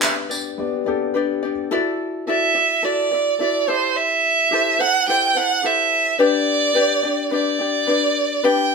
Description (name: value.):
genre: acoustic pop.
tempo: 107 BPM.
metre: 4/4.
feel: swing 55% on 16ths.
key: G major.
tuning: A4 = 439 Hz.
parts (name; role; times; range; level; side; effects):
ukulele; accompaniment; 0.0-8.7 s; D4 to D5; -22 LUFS; left 4 dB; none.
warm upright piano; accompaniment; 0.0-1.7 s; B3 to D5; -24 LUFS; left 7 dB; none.
handclaps and tambourine; drums; 0.0-0.5 s; none; -20 LUFS; right 1 dB; none.
rich violin; melody; 2.3-8.7 s; C5 to G5; -17 LUFS; right 4 dB; none.
room: moderate stone room reverb, RT60 1.0 s.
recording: band playing live in one room.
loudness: -17 LUFS.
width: side -4 dB against mid.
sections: 0.0-1.7 A section; 1.7-8.7 B section.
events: none.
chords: 0.0 G; 1.7 Dadd9; 3.7 Am7; 6.2 G.